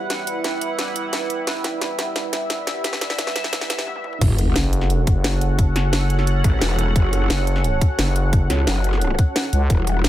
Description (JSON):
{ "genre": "dark technical drum and bass", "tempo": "175 BPM", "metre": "4/4", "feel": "straight", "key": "F# phrygian", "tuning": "A4 = 438 Hz", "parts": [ { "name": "sweeping resonant pad", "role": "sustained chords", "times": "0.0-10.1 s", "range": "G3 to F#5", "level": "-27 LUFS", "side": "right 2 dB", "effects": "chorus, sidechain pumping" }, { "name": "warbly tape-like pad", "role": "texture", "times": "0.0-10.1 s", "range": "E4 to F#5", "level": "-30 LUFS", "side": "right 1 dB", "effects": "chorus, built-in reverb, sidechain pumping" }, { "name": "drum and bass drum kit", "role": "drums", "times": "0.1-10.1 s", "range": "crash cymbal, hi-hat, snare drum, toms", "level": "-24 LUFS", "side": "equal", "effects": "overdrive, high-pass filter on hats, small room ambience, high-pass filter on snare, high-pass filter on toms, high-pass filter on cymbals" }, { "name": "growl bass", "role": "bass", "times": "4.2-10.0 s", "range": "E1 to C#2", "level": "-20 LUFS", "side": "equal", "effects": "chorus, overdrive" }, { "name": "electronic kick drum", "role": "drums", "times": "4.2-9.8 s", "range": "none", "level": "-17 LUFS", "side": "equal", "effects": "overdrive, small room ambience" }, { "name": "sub drop", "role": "sound effects", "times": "4.2-5.6 s", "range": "none", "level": "-26 LUFS", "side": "equal", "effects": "none" }, { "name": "growling FM bass", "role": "bass", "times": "4.6-10.1 s", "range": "E1 to C#2", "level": "-19 LUFS", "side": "equal", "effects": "none" } ], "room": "little or no reverb", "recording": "high-pass filter", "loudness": "-18 LUFS", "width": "side -13 dB against mid", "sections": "0.0-4.2 A section; 4.2-10.1 B section", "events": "build-up 0.0-4.2; drum fill 0.0-3.9, 3.9-4.2; break 3.9-4.2; drop 4.2-10.1; impact 4.2-5.6", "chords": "0.0 Emadd9; 4.2 F#m" }